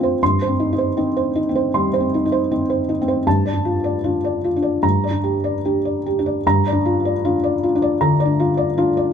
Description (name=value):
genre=neoclassical minimalist piano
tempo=78 BPM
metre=4/4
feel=rubato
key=G minor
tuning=A4 = 440 Hz
part: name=felt-muted upright piano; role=solo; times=0.0-9.1 s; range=G2 to C6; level=-16 LUFS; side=equal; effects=none
room=light reverb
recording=close, detailed microphones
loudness=-16 LUFS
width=side -7 dB against mid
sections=0.0-6.4 A section; 6.4-9.1 B section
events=none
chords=0.2 Cm/G; 3.3 Dm/G; 4.8 Gm; 6.4 Gm7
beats=| 0.21 0.97 1.74 2.50 | 3.26 4.04 4.83 5.64 | 6.44 7.22 7.99 8.76